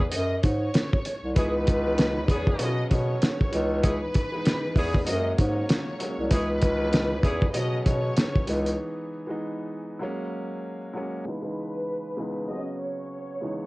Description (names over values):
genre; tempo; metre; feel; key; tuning
hip hop, boom-bap hip-hop; 97 BPM; 4/4; swing 59% on 16ths; C# dorian; A4 = 440 Hz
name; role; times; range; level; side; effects
warm studio violin section; melody; 0.0-13.7 s; B4 to D#5; -34 LUFS; equal; high-pass filter, low-pass filter, cassette tape
dark baby grand piano; accompaniment; 0.0-13.7 s; C#2 to D#4; -32 LUFS; equal; high-pass filter, low-pass filter, cassette tape
mellow bass clarinet; bass; 0.0-8.7 s; B#1 to B2; -26 LUFS; equal; none
cloth-damped thuddy drum kit; drums; 0.0-8.8 s; hi-hat, kick drum, snare drum; -24 LUFS; equal; cassette tape
warm saxophone section; stabs; 1.4-7.4 s; B3 to G#4; -36 LUFS; equal; high-pass filter, low-pass filter, cassette tape, tape echo
room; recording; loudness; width
small room ambience; home recording on cassette; -24 LUFS; side -22 dB against mid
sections
0.0-11.3 A section; 11.3-13.7 B section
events
break 0.0-1.4, 8.8-11.3; filter sweep 11.3-13.7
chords
0.1 F#sus2; 1.4 C#m7; 2.6 Bsus2; 3.5 C#m7; 5.1 F#add9; 6.3 C#m7; 7.5 Bsus2; 8.5 C#m7; 10.0 F#add9; 11.3 C#m7; 12.5 Bsus2